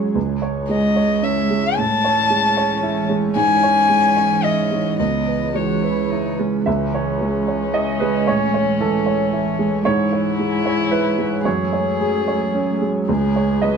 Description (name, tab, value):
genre	neoclassical piano and strings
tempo	112 BPM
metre	3/4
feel	rubato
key	C# minor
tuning	A4 = 441 Hz
part	clear grand piano	accompaniment	0.0-13.8 s	C#2 to E5	-19 LUFS	right 3 dB	none
part	ethereal airy pad	sustained chords	0.0-13.8 s	E3 to G#5	-28 LUFS	left 1 dB	ensemble chorus, built-in reverb
part	warm cello	second line	0.2-13.8 s	F#3 to F#4	-26 LUFS	right 4 dB	none
part	warm violin	melody	0.7-13.8 s	C#4 to A5	-21 LUFS	left 4 dB	none
room	moderate studio reverb, RT60 0.7 s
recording	dark, warm production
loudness	-16 LUFS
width	side -6 dB against mid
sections	0.0-6.7 A section; 6.7-13.8 A section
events	none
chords	0.2 C#m; 1.8 Amaj7; 3.4 C#m; 5.0 C#m7; 6.7 C#m; 8.3 Amaj7; 9.9 C#m; 11.5 F#madd9; 13.1 C#m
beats	| 0.15 0.70 1.23 | 1.77 2.31 2.83 | 3.36 3.89 4.43 | 4.99 5.54 6.10 | 6.66 7.20 7.74 | 8.27 8.80 9.32 | 9.85 10.38 10.91 | 11.45 12.00 12.55 | 13.09 13.63